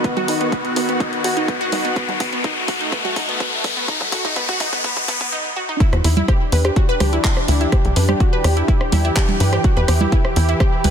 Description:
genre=melodic techno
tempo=125 BPM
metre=4/4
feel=straight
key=E minor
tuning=A4 = 439 Hz
part: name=lush unison pad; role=sustained chords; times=0.0-10.9 s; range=D#3 to G4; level=-24 LUFS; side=equal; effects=chorus, sidechain pumping
part: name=wide unison pluck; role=arpeggios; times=0.0-10.9 s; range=B3 to B4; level=-23 LUFS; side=right 1 dB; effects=sidechain pumping, digital delay
part: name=electronic kick drum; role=drums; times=0.0-10.7 s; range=none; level=-18 LUFS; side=equal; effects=none
part: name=house drum kit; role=drums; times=0.0-10.9 s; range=congas, handclaps, hi-hat, rim click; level=-24 LUFS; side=right 2 dB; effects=soft clipping on snare
part: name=riser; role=sound effects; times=0.0-5.3 s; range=none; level=-23 LUFS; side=left 4 dB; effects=none
part: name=tight sequencer bass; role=bass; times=0.2-10.9 s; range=F#1 to G2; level=-18 LUFS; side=equal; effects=sidechain pumping, high-pass filter
room=light reverb, digital ambience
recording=dense, heavily limited modern master, high-pass filter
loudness=-16 LUFS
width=side -8 dB against mid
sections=0.0-5.8 A section; 5.8-10.9 B section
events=build-up 0.0-5.8; drum fill 0.0-5.3; riser 0.0-5.3; filter sweep 0.0-5.8; drop 5.8-10.9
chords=0.0 B; 5.8 Em7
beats=| 0.04 0.52 1.00 1.48 | 1.96 2.44 2.92 3.40 | 3.88 4.36 4.84 5.32 | 5.80 6.28 6.76 7.24 | 7.72 8.20 8.68 9.16 | 9.64 10.12 10.60

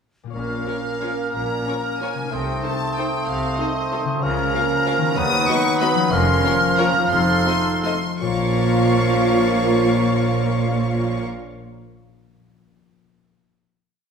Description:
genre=classical, orchestral ballroom waltz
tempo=151-205 BPM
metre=3/4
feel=rubato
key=Bb minor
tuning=A4 = 442 Hz
part: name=concert harp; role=arpeggios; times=0.2-12.1 s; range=Bb2 to F5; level=-28 LUFS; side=left 7 dB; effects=none
part: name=clear studio violin section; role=melody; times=0.3-11.2 s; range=Eb5 to D#6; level=-27 LUFS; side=left 2 dB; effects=none
part: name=mellow cor anglais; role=second line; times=0.3-11.2 s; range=A4 to Db5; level=-28 LUFS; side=right 3 dB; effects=none
part: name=mellow hollow concert flute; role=second line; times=0.3-11.2 s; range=Db6 to F6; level=-27 LUFS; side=left 1 dB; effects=none
part: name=warm clarinet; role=second line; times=0.3-11.2 s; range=C4 to F4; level=-28 LUFS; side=right 2 dB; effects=none
part: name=warm bassoon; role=accompaniment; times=0.3-11.2 s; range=F3 to Bb3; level=-27 LUFS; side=right 1 dB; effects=none
part: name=clear studio cello section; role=bass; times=0.3-11.2 s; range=D#2 to Db3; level=-27 LUFS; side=right 1 dB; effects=none
part: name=rich studio double bass section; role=bass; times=0.3-11.2 s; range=F1 to D#2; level=-28 LUFS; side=right 2 dB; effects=none
part: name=clear studio violin section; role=second line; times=0.7-11.2 s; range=A4 to F5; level=-31 LUFS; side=left 1 dB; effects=none
part: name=warm studio viola section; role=accompaniment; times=0.7-11.2 s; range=Bb3 to F#4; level=-28 LUFS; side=equal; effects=none
part: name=dark French horn section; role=sustained chords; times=0.7-11.2 s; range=Eb3 to F4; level=-29 LUFS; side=left 2 dB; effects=none
room=wet recital hall reverb, RT60 1.4 s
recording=recorded in a church or concert hall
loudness=-17 LUFS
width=side -6 dB against mid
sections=0.3-8.2 A section; 8.2-10.5 final chord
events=slowing down 5.7-8.2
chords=0.3 Bbm; 2.3 Adim/C; 4.2 Bbm/Db; 5.2 B/D#; 6.1 Bbm/F; 7.1 F7; 8.2 Bbm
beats=| 0.34 0.67 1.01 | 1.34 1.67 2.00 | 2.32 2.64 2.97 | 3.28 3.60 3.92 | 4.23 4.55 4.87 | 5.18 5.49 5.82 | 6.13 6.45 6.79 | 7.11 7.46 7.84 | 8.21 8.59 8.97 | 9.34 9.71 10.10

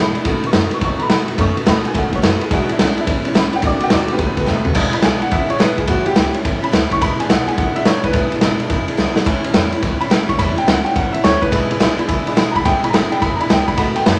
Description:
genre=rockabilly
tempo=213 BPM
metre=4/4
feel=swing 64% on 8ths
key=E mixolydian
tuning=A4 = 440 Hz
part: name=picked steel-string acoustic guitar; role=accompaniment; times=0.0-14.2 s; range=E2 to F#4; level=-24 LUFS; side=equal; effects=none
part: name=tack piano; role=accompaniment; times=0.0-4.7, 11.5-14.2 s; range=D#3 to C#6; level=-26 LUFS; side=equal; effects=none
part: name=upright bass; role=bass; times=0.0-14.2 s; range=E1 to F#2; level=-28 LUFS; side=equal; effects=none
part: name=raw garage drum kit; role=drums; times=0.1-14.1 s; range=crash cymbal, kick drum, ride cymbal, snare drum, toms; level=-19 LUFS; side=equal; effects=none
part: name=clear upright piano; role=melody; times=4.9-14.2 s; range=F#4 to C#6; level=-22 LUFS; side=equal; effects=none
room=moderate large studio reverb, RT60 1.2 s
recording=none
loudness=-16 LUFS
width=mono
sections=0.0-4.8 A section; 4.8-14.2 B section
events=honky-tonk piano solo 0.0-4.8; drum fill 4.5, 9.0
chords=0.3 B7; 2.5 E7; 3.1 A7; 3.6 B7; 4.8 E7; 5.9 A7; 7.0 E7; 9.3 A7; 11.5 E7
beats=| 0.26 0.54 0.82 1.10 | 1.39 1.67 1.95 2.23 | 2.51 2.79 3.08 3.36 | 3.64 3.92 4.20 4.48 | 4.76 5.04 5.33 5.61 | 5.89 6.17 6.45 6.73 | 7.01 7.30 7.58 7.86 | 8.14 8.42 8.71 8.99 | 9.27 9.55 9.83 10.12 | 10.40 10.68 10.96 11.24 | 11.53 11.81 12.09 12.37 | 12.66 12.94 13.22 13.50 | 13.79 14.07

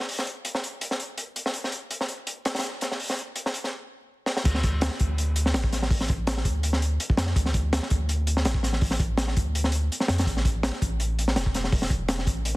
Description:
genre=drum and bass, jungle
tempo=165 BPM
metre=4/4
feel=straight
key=D minor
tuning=A4 = 445 Hz
part: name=crunchy breakbeat drum kit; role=drums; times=0.0-12.5 s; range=crash cymbal, hi-hat, kick drum, snare drum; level=-25 LUFS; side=equal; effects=high-pass filter on kick, high-pass filter on hats, high-pass filter on cymbals, high-pass filter on snare, high-pass filter on room
part: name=soft dub sub bass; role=bass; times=4.5-12.6 s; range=E1 to F2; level=-26 LUFS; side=equal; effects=tube saturation
room=little or no reverb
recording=dense, heavily limited modern master, vinyl crackle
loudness=-24 LUFS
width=side -21 dB against mid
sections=0.0-4.5 A section; 4.5-12.6 B section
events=drum fill 4.3; drop 4.5-12.6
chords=none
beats=| 0.09 0.45 0.82 1.18 | 1.54 1.91 2.27 2.63 | 3.00 3.36 3.73 4.09 | 4.45 4.82 5.18 5.54 | 5.91 6.27 6.63 7.00 | 7.36 7.72 8.09 8.45 | 8.82 9.18 9.54 9.91 | 10.27 10.63 11.00 11.36 | 11.72 12.09 12.45

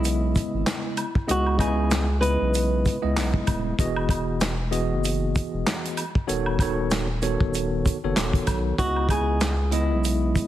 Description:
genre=hip hop, boom-bap hip-hop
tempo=96 BPM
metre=4/4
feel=swing 58% on 16ths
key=C# minor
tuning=A4 = 440 Hz
part: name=flamenco guitar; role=melody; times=0.0-3.3, 8.8-10.5 s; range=E4 to B4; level=-28 LUFS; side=equal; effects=high-pass filter, low-pass filter, ping-pong delay
part: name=tine electric piano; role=accompaniment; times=0.0-10.5 s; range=C#3 to D#5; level=-27 LUFS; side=equal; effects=medium stereo tremolo, high-pass filter, low-pass filter
part: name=saturated sub bass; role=bass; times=0.0-10.4 s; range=D#1 to C#2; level=-26 LUFS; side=equal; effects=none
part: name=warm soul drum kit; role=drums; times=0.0-10.5 s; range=handclaps, hi-hat, kick drum, snare drum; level=-25 LUFS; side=equal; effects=none
part: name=maracas and woodblock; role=percussion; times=0.0-10.5 s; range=none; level=-35 LUFS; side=right 1 dB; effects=none
room=light reverb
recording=heavily compressed radio sound, multiband compression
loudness=-21 LUFS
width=side -13 dB against mid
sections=0.0-10.5 A section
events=none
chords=0.0 C#m7; 3.8 Emaj9; 6.3 B7/D#; 8.8 C#m7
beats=0.04 0.66 | 1.29 1.91 2.54 3.16 | 3.79 4.41 5.04 5.66 | 6.29 6.91 7.54 8.16 | 8.79 9.41 10.04

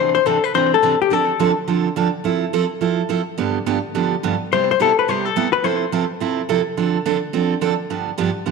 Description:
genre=country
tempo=212 BPM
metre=4/4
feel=swing 62% on 8ths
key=C major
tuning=A4 = 442 Hz
part: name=hollow-body jazz guitar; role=melody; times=0.0-1.6, 4.5-6.1 s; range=G4 to C5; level=-17 LUFS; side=left 10 dB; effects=slapback echo
part: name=picked steel-string acoustic guitar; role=accompaniment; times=0.0-8.5 s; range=G2 to A4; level=-19 LUFS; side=right 8 dB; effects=none
room=wet echo chamber reverb, RT60 2.0 s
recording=1960s-style stereo with parts hard left and right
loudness=-17 LUFS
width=side -4 dB against mid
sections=0.0-8.5 A section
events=none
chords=0.0 Cadd9; 1.1 Dm7; 2.2 Fmaj7; 3.4 G7; 4.5 Cmaj7; 5.6 Fmaj7/C; 6.8 Dm7; 7.9 G7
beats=0.26 0.55 0.83 | 1.11 1.40 1.68 1.96 | 2.25 2.53 2.81 3.09 | 3.38 3.66 3.94 4.23 | 4.51 4.79 5.08 5.36 | 5.64 5.92 6.21 6.49 | 6.77 7.06 7.34 7.62 | 7.91 8.19 8.47

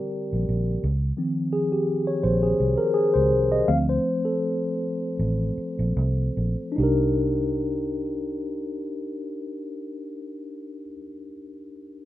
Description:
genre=lush 1970s-style soul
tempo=73-86 BPM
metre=4/4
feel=swing 54% on 16ths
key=C dorian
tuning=A4 = 437 Hz
part: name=mellow tine electric piano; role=accompaniment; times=0.0-12.1 s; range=D3 to F5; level=-24 LUFS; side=left 1 dB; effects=medium stereo tremolo
part: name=vintage muted fingered electric bass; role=bass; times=0.3-10.9 s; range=A1 to D2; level=-24 LUFS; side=right 1 dB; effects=none
room=moderate studio reverb, RT60 0.6 s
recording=rough home demo mix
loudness=-22 LUFS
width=side -14 dB against mid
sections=0.0-6.8 A section; 6.8-10.1 B section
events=tine electric piano solo 0.0-6.8; slowing down 0.8-6.8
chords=0.0 Bb6; 0.8 Dbmaj7; 3.7 Dm7 (rootless); 6.8 Cm7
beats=0.13 | 0.83 1.53 2.24 2.95 | 3.68 4.42 5.18 5.97 | 6.77 7.59 8.41 9.23

